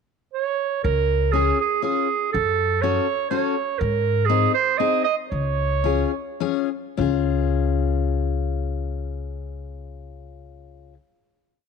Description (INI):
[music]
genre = alpine folk, alpine dance band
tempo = 102-124 BPM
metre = 3/4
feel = swing 54% on 8ths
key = Db major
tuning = A4 = 440 Hz
[part]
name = warm clarinet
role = melody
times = 0.3-6.3 s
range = Ab4 to Eb5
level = -22 LUFS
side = right 9 dB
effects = none
[part]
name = upright bass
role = bass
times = 0.8-10.9 s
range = Db2 to Ab2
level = -24 LUFS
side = left 2 dB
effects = none
[part]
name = picked steel-string acoustic guitar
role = accompaniment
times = 1.3-11.0 s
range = C4 to A4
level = -26 LUFS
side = left 16 dB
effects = none
[sound]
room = light reverb, small room ambience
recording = 1960s-style stereo with parts hard left and right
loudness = -20 LUFS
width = side -6 dB against mid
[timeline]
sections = 0.0-0.8 pickup bar; 0.8-7.0 A section; 7.0-10.5 final chord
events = slowing down 3.8-7.0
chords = 0.0 N.C.; 0.8 Db; 2.3 Gbm; 3.8 Ab; 5.3 Db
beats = 0.35 | 0.85 1.35 1.84 | 2.33 2.82 3.31 | 3.79 4.28 4.78 | 5.30 5.83 6.39 | 6.98 7.56 8.13 | 8.71 9.29 9.87